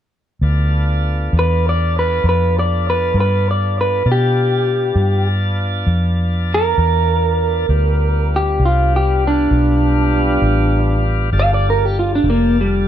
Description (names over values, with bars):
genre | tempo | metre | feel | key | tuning
blues | 66 BPM (dotted quarters) | 12/8 | straight | G mixolydian | A4 = 439 Hz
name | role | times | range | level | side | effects
tonewheel organ | sustained chords | 0.4-12.9 s | G3 to A5 | -24 LUFS | left 1 dB | slow rotary speaker
vintage muted fingered electric bass | bass | 0.4-12.9 s | F1 to B2 | -16 LUFS | equal | none
electric guitar through a small old amp | melody | 1.4-12.9 s | G3 to F5 | -17 LUFS | right 1 dB | none
room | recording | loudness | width
light reverb | dark, warm production | -14 LUFS | side -10 dB against mid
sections
0.4-12.9 A section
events
clean electric guitar solo 0.4-12.9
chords
0.4 G9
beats
| 0.42 1.33 2.24 3.15 | 4.06 4.97 5.88 6.79 | 7.70 8.61 9.52 10.43 | 11.34 12.25